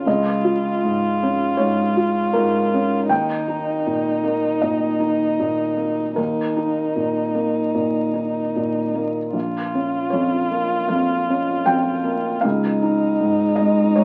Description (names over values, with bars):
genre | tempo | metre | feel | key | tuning
neoclassical piano and strings | 78 BPM | 4/4 | rubato | unclear | A4 = 440 Hz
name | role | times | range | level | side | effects
dark violin | melody | 0.0-14.0 s | Eb4 to F4 | -24 LUFS | equal | none
felt-muted upright piano | accompaniment | 0.0-14.0 s | Bb1 to G5 | -22 LUFS | equal | none
room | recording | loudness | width
moderate studio reverb, RT60 0.7 s | very old 78 rpm record, vinyl crackle | -21 LUFS | mono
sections
0.0-14.0 A section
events
none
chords
0.1 Dbadd9; 3.1 Eb; 9.3 Bbm; 12.4 Dbadd9